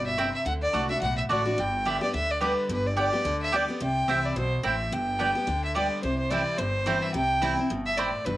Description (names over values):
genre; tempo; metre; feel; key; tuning
bluegrass; 215 BPM; 4/4; swing 56% on 8ths; unclear; A4 = 443 Hz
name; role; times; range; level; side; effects
clear fiddle; melody; 0.0-8.4 s; B4 to G5; -28 LUFS; equal; cassette tape
picked steel-string acoustic guitar; accompaniment; 0.0-8.4 s; G2 to G4; -31 LUFS; left 2 dB; cassette tape
upright bass; bass; 0.0-8.4 s; G1 to D2; -33 LUFS; equal; none
mandolin; stabs; 0.2-8.1 s; A3 to G5; -29 LUFS; right 3 dB; cassette tape
room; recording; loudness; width
moderate spring reverb, RT60 1.2 s, small room reverb; home recording on cassette; -24 LUFS; side -15 dB against mid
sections
0.0-6.0 A section; 6.0-8.4 B section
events
none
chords
0.5 D; 1.6 G; 3.8 C; 4.9 G; 6.0 C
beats
0.18 | 0.46 0.74 1.02 1.30 | 1.58 1.85 2.13 2.41 | 2.69 2.97 3.25 3.53 | 3.81 4.08 4.36 4.64 | 4.92 5.20 5.48 5.76 | 6.04 6.31 6.59 6.87 | 7.15 7.43 7.71 7.98 | 8.26